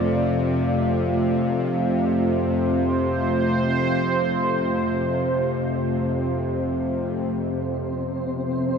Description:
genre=dark ambient drone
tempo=free time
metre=none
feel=none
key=unclear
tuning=A4 = 441 Hz
part: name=sweeping resonant pad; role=sustained chords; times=0.0-7.3 s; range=A3 to F5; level=-24 LUFS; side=right 1 dB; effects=chorus
part: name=bowed-like drone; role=drone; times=0.0-8.8 s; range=F2 to C3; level=-23 LUFS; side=left 1 dB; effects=built-in reverb
part: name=flickering grainy texture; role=texture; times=7.5-8.8 s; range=C4 to C5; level=-28 LUFS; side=left 2 dB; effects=built-in reverb
room=wet huge ambient reverb, RT60 9.2 s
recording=dreamy mix soaked in reverb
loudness=-21 LUFS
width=side -6 dB against mid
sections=0.0-7.3 A section; 7.3-8.8 B section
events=none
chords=0.0 Dm; 7.3 F5

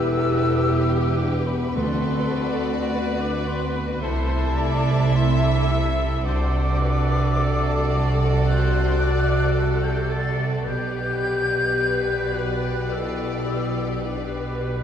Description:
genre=classical, slow romantic movement for symphony orchestra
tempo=54 BPM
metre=4/4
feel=rubato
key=G major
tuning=A4 = 440 Hz
part: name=warm studio violin section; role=melody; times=0.0-14.8 s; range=B4 to E5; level=-34 LUFS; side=left 4 dB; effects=none
part: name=clear oboe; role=second line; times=0.0-14.8 s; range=A4 to B4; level=-36 LUFS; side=right 1 dB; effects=none
part: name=hollow concert flute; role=second line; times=0.0-14.6 s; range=A5 to A6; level=-29 LUFS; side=left 1 dB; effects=none
part: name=mellow clarinet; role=second line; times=0.0-14.8 s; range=E4 to G4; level=-34 LUFS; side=left 5 dB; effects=none
part: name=warm studio violin section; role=second line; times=0.0-14.8 s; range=E4 to B4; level=-33 LUFS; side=left 3 dB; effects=none
part: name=rich studio viola section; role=accompaniment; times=0.0-14.8 s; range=G4 to E5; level=-31 LUFS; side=equal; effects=none
part: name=dark French horn section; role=sustained chords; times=0.0-14.6 s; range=A3 to A4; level=-28 LUFS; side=left 2 dB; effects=none
part: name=bright studio cello section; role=bass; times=0.0-14.8 s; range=D2 to C3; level=-27 LUFS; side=right 3 dB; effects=none
part: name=warm studio double bass section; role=bass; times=0.0-14.8 s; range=E1 to D2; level=-24 LUFS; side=right 1 dB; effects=none
part: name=timpani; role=percussion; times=1.8-3.4 s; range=D3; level=-32 LUFS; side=right 1 dB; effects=none
room=wet concert hall reverb, RT60 2.3 s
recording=heard from further back in the room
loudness=-20 LUFS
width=side -9 dB against mid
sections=0.0-14.8 A section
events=none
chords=0.0 Em; 1.8 Bm/D; 4.0 Am/C; 6.3 D7/C; 10.7 G/B

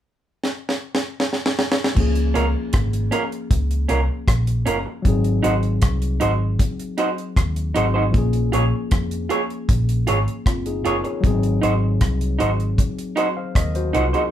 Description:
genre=lovers rock reggae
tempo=78 BPM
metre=4/4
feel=straight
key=Db major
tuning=A4 = 440 Hz
part: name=deep reggae drum kit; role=drums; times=0.4-14.3 s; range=crash cymbal, hi-hat, kick drum, rim click, snare drum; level=-20 LUFS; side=equal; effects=none
part: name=tine electric piano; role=accompaniment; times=1.9-14.3 s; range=F3 to F5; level=-26 LUFS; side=left 3 dB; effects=overdrive
part: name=vintage muted fingered electric bass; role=bass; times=2.0-14.1 s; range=Gb1 to F2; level=-21 LUFS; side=equal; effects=none
part: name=electric guitar through a small old amp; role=stabs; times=2.3-14.2 s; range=Db4 to Db5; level=-21 LUFS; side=right 3 dB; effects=none
room=moderate studio reverb, RT60 0.5 s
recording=band playing live in one room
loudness=-18 LUFS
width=side -11 dB against mid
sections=0.0-2.0 A section; 2.0-14.3 B section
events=drum fill 0.4-2.0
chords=0.0 N.C.; 2.0 Db6; 5.1 Ab7; 8.1 Bbm7; 11.2 Ab7

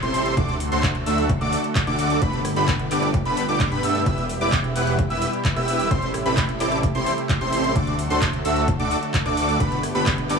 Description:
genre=EDM, festival progressive house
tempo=130 BPM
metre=4/4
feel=straight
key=unclear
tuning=A4 = 442 Hz
part: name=lush unison pad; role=sustained chords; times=0.0-10.4 s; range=B2 to A4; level=-28 LUFS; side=right 1 dB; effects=chorus, sidechain pumping
part: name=wide unison lead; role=arpeggios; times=0.0-10.4 s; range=B5 to F#6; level=-26 LUFS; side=equal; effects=sidechain pumping, tape echo
part: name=dense compressed supersaw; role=riff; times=0.0-10.4 s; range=A3 to F#5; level=-25 LUFS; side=right 1 dB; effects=sidechain pumping, tape echo
part: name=wide detuned saw bass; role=bass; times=0.0-10.4 s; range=E1 to G2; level=-28 LUFS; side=equal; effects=chorus, tube saturation, sidechain pumping
part: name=big-room dance drum kit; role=drums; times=0.0-10.4 s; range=handclaps, hi-hat, rim click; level=-30 LUFS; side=equal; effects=none
part: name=electronic kick drum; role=drums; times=0.4-10.2 s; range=none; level=-24 LUFS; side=equal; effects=none
room=light reverb, digital ambience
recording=none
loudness=-19 LUFS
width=side -5 dB against mid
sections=0.0-10.4 A section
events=none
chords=0.4 D; 2.2 Gadd9; 4.1 Em; 5.9 Am7; 7.8 D; 9.6 Gadd9

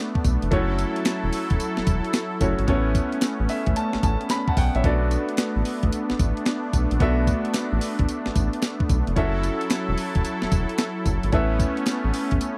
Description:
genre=R&B, new jack swing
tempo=111 BPM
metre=4/4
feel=swing 65% on 16ths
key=B minor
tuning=A4 = 440 Hz
part: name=clear baby grand piano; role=accompaniment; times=0.0-12.6 s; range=A3 to B5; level=-31 LUFS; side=equal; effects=none
part: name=brassy analog pad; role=sustained chords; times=0.0-12.6 s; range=F#3 to A4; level=-30 LUFS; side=equal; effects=chorus
part: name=round analog bass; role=bass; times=0.2-12.4 s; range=E1 to B1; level=-26 LUFS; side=equal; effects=none
part: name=clean 12-bit digital drum machine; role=drums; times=0.2-12.6 s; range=hi-hat, kick drum, snare drum, tambourine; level=-27 LUFS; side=equal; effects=none
part: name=group handclap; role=percussion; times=1.1-12.0 s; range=none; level=-42 LUFS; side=equal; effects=none
room=little or no reverb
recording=dry, close 1970s-style studio recording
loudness=-23 LUFS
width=mono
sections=0.0-12.6 A section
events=grand piano fill 3.2-4.8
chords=0.0 Bm7; 0.5 F#m7; 2.7 Aadd9; 4.8 Bm7; 9.2 F#m7; 11.3 Aadd9

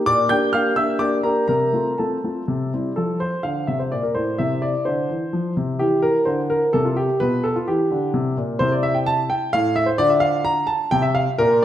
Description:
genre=classical-period piano sonatina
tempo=128 BPM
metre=3/4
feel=rubato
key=F major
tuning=A4 = 440 Hz
part: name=clear grand piano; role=solo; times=0.1-11.6 s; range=A2 to G6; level=-18 LUFS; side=equal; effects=none
room=wet recital hall reverb, RT60 1.4 s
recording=none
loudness=-18 LUFS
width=side -11 dB against mid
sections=0.0-3.0 A section; 3.0-11.6 B section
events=none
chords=0.1 Gm/Bb; 1.5 F/C; 2.5 C; 3.0 F; 4.4 C; 5.3 F5; 5.8 C; 7.2 G7/B; 8.1 C5; 8.6 C; 9.5 N.C.; 10.0 Dm

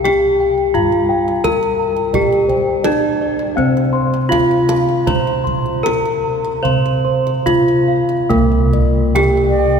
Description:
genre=Javanese gamelan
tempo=70-86 BPM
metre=4/4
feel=straight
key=C slendro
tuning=A4 = 440 Hz
part: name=gamelan-type bronze metallophone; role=melody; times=0.0-9.8 s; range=Bb3-40c to C5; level=-16 LUFS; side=left 1 dB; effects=none
part: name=gamelan-type bossed gongs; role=arpeggios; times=0.0-9.6 s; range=C5 to C6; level=-24 LUFS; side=left 3 dB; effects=none
part: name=gamelan-type bronze metallophone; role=arpeggios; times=0.0-9.8 s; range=Bb4-40c to C6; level=-26 LUFS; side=right 4 dB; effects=none
part: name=gamelan-type bossed gongs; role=bass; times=0.0-9.8 s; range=C2 to C5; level=-19 LUFS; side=right 1 dB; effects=none
part: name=kendang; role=percussion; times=0.1-9.5 s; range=none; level=-24 LUFS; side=right 3 dB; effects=none
part: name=bansuri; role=second line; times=9.5-9.8 s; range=D5+44c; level=-17 LUFS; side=right 2 dB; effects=none
room=wet cathedral reverb, RT60 5.5 s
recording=recorded in a church or concert hall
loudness=-13 LUFS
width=side -6 dB against mid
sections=0.0-8.3 A section; 8.3-9.8 B section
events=none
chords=none

